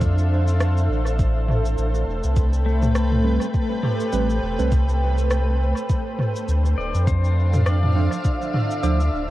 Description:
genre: ambient dub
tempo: 102 BPM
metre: 4/4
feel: swing 57% on 16ths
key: A minor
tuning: A4 = 445 Hz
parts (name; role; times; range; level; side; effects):
- granular cloud pad; sustained chords; 0.0-9.3 s; A3 to G5; -26 LUFS; equal; built-in reverb, vintage 12-bit sampler grit, cassette tape
- warm sub bass; bass; 0.0-9.3 s; D1 to F2; -20 LUFS; equal; tube saturation
- electronic kick drum; drums; 0.0-8.4 s; none; -22 LUFS; equal; cassette tape
- organic electronic drum kit; drums; 0.0-9.1 s; cabasa, rim click, toms; -27 LUFS; equal; cassette tape, dub echo
- pedal steel guitar; arpeggios; 2.7-9.3 s; A3 to D6; -30 LUFS; left 5 dB; cassette tape, analog delay
- mellow tine electric piano; stabs; 3.2-9.0 s; F3 to C5; -28 LUFS; right 6 dB; medium stereo tremolo, cassette tape, dub echo
room: little or no reverb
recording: home recording on cassette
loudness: -18 LUFS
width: side -16 dB against mid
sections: 0.0-9.3 A section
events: none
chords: 0.0 Dm7; 1.2 Am9; 5.9 Dm7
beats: 0.01 0.60 | 1.19 1.78 2.37 2.95 | 3.54 4.13 4.72 5.31 | 5.89 6.48 7.07 7.66 | 8.25 8.84

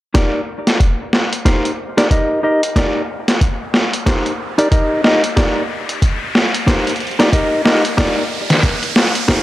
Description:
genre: glitch hop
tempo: 92 BPM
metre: 4/4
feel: swing 60% on 16ths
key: C minor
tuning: A4 = 441 Hz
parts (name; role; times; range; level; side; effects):
- mellow electric guitar; stabs; 0.1-9.4 s; Eb4 to Eb5; -18 LUFS; equal; spring reverb, sidechain pumping, analog delay
- boom bap sampler-style drum kit; drums; 0.1-9.4 s; hi-hat, snare drum; -16 LUFS; equal; none
- riser; sound effects; 1.4-9.4 s; none; -25 LUFS; right 1 dB; none
- electronic kick drum; drums; 0.2-9.4 s; none; -16 LUFS; equal; none
room: light reverb, digital ambience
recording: dry, gritty hardware recording, cassette tape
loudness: -13 LUFS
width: side -15 dB against mid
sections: 0.2-9.4 A section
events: build-up 0.2-9.4; drum fill 0.2-9.4; filter sweep 0.2-9.4; riser 1.4-9.4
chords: 0.2 Cm9 (rootless)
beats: | 0.15 0.80 1.46 2.11 | 2.76 3.41 4.07 4.72 | 5.37 6.02 6.67 7.33 | 7.98 8.63 9.28

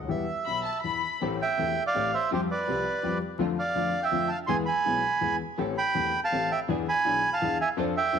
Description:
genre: tango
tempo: 164 BPM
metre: 3/4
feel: rubato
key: A minor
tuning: A4 = 440 Hz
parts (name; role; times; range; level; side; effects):
- warm concert grand piano; accompaniment; 0.0-8.2 s; E1 to A4; -31 LUFS; left 6 dB; none
- bandoneon; melody; 0.1-8.2 s; G4 to C6; -26 LUFS; right 3 dB; none
- warm studio violin section; second line; 0.5-1.2 s; A5 to B5; -31 LUFS; left 8 dB; none
- dark studio string section; stabs; 1.2-8.2 s; F3 to C5; -37 LUFS; right 8 dB; none
room: moderate echo chamber reverb, RT60 2.2 s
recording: 1960s-style stereo with parts hard left and right, vinyl crackle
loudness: -25 LUFS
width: side -7 dB against mid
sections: 0.0-1.2 A section; 1.2-8.2 B section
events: none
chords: 0.1 Em; 1.2 Am7; 2.3 Fsus2; 3.4 Dm7/F; 4.5 E; 5.6 Am7; 6.7 E7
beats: | 0.09 0.46 0.84 | 1.21 1.58 1.95 | 2.31 2.67 3.03 | 3.39 3.75 4.12 | 4.48 4.84 5.21 | 5.58 5.95 6.32 | 6.68 7.05 7.41 | 7.77 8.12

